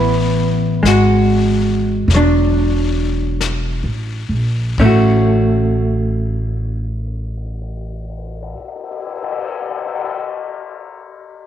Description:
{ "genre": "jazz ballad", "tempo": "43-51 BPM", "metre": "4/4", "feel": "swing 66% on 8ths", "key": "A major", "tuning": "A4 = 441 Hz", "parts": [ { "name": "vintage hollow-body jazz guitar", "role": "accompaniment", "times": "0.0-8.6 s", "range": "E3 to F#4", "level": "-15 LUFS", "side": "equal", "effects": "none" }, { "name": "upright bass", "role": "bass", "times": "0.0-8.5 s", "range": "E1 to Bb1", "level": "-17 LUFS", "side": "equal", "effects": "none" }, { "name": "vintage brush drum kit", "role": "drums", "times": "0.9-10.1 s", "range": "brushed snare drum, cymbal swell, hi-hat, kick drum, ride cymbal, snare drum", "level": "-26 LUFS", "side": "left 6 dB", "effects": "none" } ], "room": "light reverb, small room ambience", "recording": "1960s-style stereo", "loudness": "-14 LUFS", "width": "side -10 dB against mid", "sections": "0.0-4.8 A section; 4.8-10.3 B section", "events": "slowing down 0.0-4.8", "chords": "0.0 Asus2; 4.8 A6" }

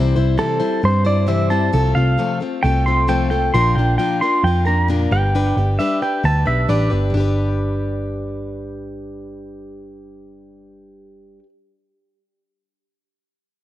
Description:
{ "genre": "folk rock and heartland rock", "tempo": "133 BPM", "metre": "4/4", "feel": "straight", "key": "G mixolydian", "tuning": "A4 = 440 Hz", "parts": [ { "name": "picked plugged-in steel-string acoustic guitar", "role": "accompaniment", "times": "0.0-11.5 s", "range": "Bb2 to C5", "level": "-23 LUFS", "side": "left 4 dB", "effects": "none" }, { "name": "hollow-body short-scale picked electric bass", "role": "bass", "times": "0.0-11.4 s", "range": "G1 to G2", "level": "-18 LUFS", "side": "right 1 dB", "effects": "none" }, { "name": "pedal steel guitar", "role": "melody", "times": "0.4-6.9 s", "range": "A4 to C6", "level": "-20 LUFS", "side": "right 2 dB", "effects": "analog delay" } ], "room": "light reverb", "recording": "dark, warm production", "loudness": "-15 LUFS", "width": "side -14 dB against mid", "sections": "0.0-7.1 A section; 7.1-10.7 B section", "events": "pedal steel guitar solo 0.0-7.1", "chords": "0.0 C; 1.7 F/C; 3.5 Bb; 5.1 G" }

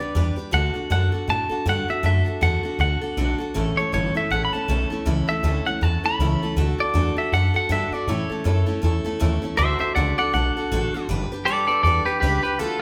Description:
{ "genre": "rockabilly", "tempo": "159 BPM", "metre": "4/4", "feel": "swing 59% on 8ths", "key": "D major", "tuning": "A4 = 439 Hz", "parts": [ { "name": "clean electric guitar", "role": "melody", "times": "0.0-12.8 s", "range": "F4 to B5", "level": "-26 LUFS", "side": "equal", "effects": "spring reverb" }, { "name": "picked steel-string acoustic guitar", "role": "accompaniment", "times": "0.0-12.8 s", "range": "A2 to B4", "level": "-29 LUFS", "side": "equal", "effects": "none" }, { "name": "upright bass", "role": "bass", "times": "0.0-12.8 s", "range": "G1 to A2", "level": "-26 LUFS", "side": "equal", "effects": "none" } ], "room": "wet large studio reverb, RT60 1.3 s", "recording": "band playing live in one room", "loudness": "-22 LUFS", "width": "mono", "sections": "0.0-9.6 A section; 9.6-12.8 B section", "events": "clean electric guitar solo 9.6-12.8", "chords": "0.0 G; 0.5 D; 3.5 A; 6.6 D; 8.1 A; 9.6 D; 11.1 G" }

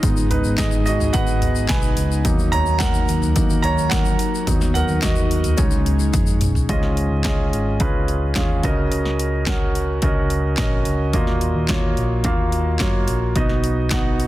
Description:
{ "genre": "piano-driven pop", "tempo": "108 BPM", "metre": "4/4", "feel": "straight", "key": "Db mixolydian", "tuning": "A4 = 441 Hz", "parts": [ { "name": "warm grand piano", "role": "accompaniment", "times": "0.0-14.3 s", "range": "Ab2 to Bb5", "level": "-22 LUFS", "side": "right 2 dB", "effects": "none" }, { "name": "airy breathy pad", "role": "sustained chords", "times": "0.0-6.7 s", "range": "Gb3 to Eb4", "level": "-28 LUFS", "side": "left 3 dB", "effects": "chorus" }, { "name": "picked electric bass", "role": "bass", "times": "0.0-14.3 s", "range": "Ab1 to Gb2", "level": "-22 LUFS", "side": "equal", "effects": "none" }, { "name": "house drum kit", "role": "drums", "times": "0.0-14.3 s", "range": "handclaps, hi-hat, kick drum, snare drum, toms", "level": "-21 LUFS", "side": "equal", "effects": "none" }, { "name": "tube shaker", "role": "percussion", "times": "0.0-6.7 s", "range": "none", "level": "-34 LUFS", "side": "left 11 dB", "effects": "none" } ], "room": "little or no reverb", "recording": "dense, heavily limited modern master", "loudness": "-17 LUFS", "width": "side -15 dB against mid", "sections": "0.0-6.7 A section; 6.7-14.3 B section", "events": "grand piano solo 0.0-6.7; drum fill 6.1-6.7", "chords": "0.0 Abm; 2.2 Ebm; 4.5 Cb/Eb; 5.6 Dbsus2; 6.7 Dbadd9; 8.6 Gb6/Db; 11.1 Ebmadd9; 13.4 Cb" }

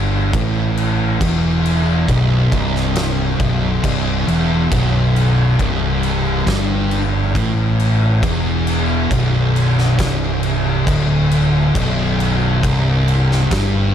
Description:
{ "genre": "stoner and doom metal", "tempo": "68 BPM", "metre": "4/4", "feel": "straight", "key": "B phrygian", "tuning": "A4 = 440 Hz", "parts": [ { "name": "thick fuzz guitar", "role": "riff", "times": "0.0-13.9 s", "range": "B1 to A2", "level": "-19 LUFS", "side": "left 7 dB", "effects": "distortion" }, { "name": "thick fuzz guitar", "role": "riff", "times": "0.0-13.9 s", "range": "B1 to A2", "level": "-19 LUFS", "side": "right 6 dB", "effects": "distortion" }, { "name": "growling fingered electric bass", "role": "bass", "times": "0.0-13.9 s", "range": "B0 to A1", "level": "-21 LUFS", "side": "equal", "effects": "overdrive" }, { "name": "oversized low-tuned drum kit", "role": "drums", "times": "0.3-13.7 s", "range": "crash cymbal, kick drum, snare drum", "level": "-21 LUFS", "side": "left 1 dB", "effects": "none" } ], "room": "small room ambience", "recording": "none", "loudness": "-14 LUFS", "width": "side -9 dB against mid", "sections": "0.0-13.9 A section", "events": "none", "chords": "0.0 Bm" }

